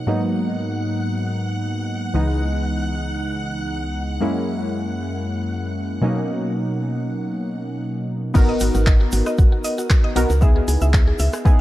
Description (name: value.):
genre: deep house.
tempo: 116 BPM.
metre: 4/4.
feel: swing 53% on 16ths.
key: G# minor.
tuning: A4 = 441 Hz.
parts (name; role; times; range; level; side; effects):
warm analog keys; stabs; 0.0-11.6 s; C#2 to A#4; -22 LUFS; equal; chorus, sidechain pumping, low-pass filter, dub echo.
string machine, violins; texture; 0.0-7.8 s; F#5 to F#6; -34 LUFS; equal; ensemble chorus.
mallet-like synth pluck; arpeggios; 8.3-11.5 s; F#4 to E5; -28 LUFS; right 1 dB; chorus, sidechain pumping, dub echo.
deep house drum kit; drums; 8.3-11.4 s; crash cymbal, handclaps, hi-hat, rim click; -28 LUFS; equal; studio ambience.
tube shaker; percussion; 8.3-11.6 s; none; -35 LUFS; left 1 dB; none.
woody FM bass; bass; 8.4-11.3 s; G#1 to C#2; -19 LUFS; equal; none.
electronic kick drum; drums; 8.4-11.6 s; none; -14 LUFS; equal; studio ambience.
room: light reverb.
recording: dark, warm production.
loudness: -18 LUFS.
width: side -15 dB against mid.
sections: 0.0-8.4 A section; 8.4-11.6 B section.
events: filter sweep on synth keys 0.0-8.4; drop 8.4-11.6.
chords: 0.1 G#m9; 2.1 C#m9; 4.2 F#9; 6.0 Bmaj9; 8.4 G#m9; 10.4 C#m9.